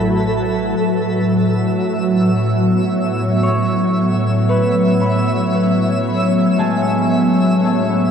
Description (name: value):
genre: ambient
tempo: 57 BPM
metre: 4/4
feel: straight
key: A major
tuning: A4 = 439 Hz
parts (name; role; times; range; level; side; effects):
- ethereal airy pad; sustained chords; 0.0-8.1 s; A2 to E5; -15 LUFS; equal; ensemble chorus, built-in reverb
- concert harp; arpeggios; 0.0-8.1 s; G#3 to B5; -22 LUFS; equal; ping-pong delay
- warm sub bass; bass; 0.0-0.7 s; A1; -34 LUFS; equal; none
- organ-like drone; drone; 0.0-8.1 s; A3 to E4; -33 LUFS; left 2 dB; none
- twinkling granular texture; texture; 0.0-8.1 s; A4 to B6; -24 LUFS; right 2 dB; built-in reverb
room: wet cathedral reverb, RT60 6.8 s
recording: dark, warm production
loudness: -14 LUFS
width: side -7 dB against mid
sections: 0.8-8.1 A section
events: none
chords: 0.0 Amaj13